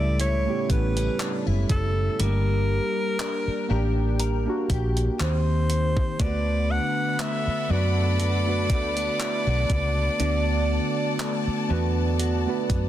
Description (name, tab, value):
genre	contemporary R&B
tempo	60 BPM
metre	4/4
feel	swing 54% on 16ths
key	D major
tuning	A4 = 440 Hz
part	warm alto saxophone	melody	0.0-12.9 s	A4 to F#5	-29 LUFS	equal	ping-pong delay
part	muted felt-like synth keys	accompaniment	0.0-12.9 s	C#3 to D5	-29 LUFS	right 4 dB	chorus
part	direct-recorded clean electric guitar	arpeggios	0.0-12.9 s	A2 to Bb4	-33 LUFS	left 8 dB	analog chorus
part	vintage muted fingered electric bass	bass	0.0-12.9 s	F#1 to F#2	-24 LUFS	equal	none
part	crisp 8-bit digital drum machine	drums	0.2-12.9 s	handclaps, hi-hat, kick drum	-28 LUFS	equal	none
part	rich studio string section	sustained chords	6.2-12.9 s	A4 to B5	-34 LUFS	left 5 dB	none
room	little or no reverb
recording	dense, heavily limited modern master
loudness	-22 LUFS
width	side -12 dB against mid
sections	0.0-12.9 A section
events	none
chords	0.0 A7; 2.2 Gm; 5.2 Eb6; 6.2 D6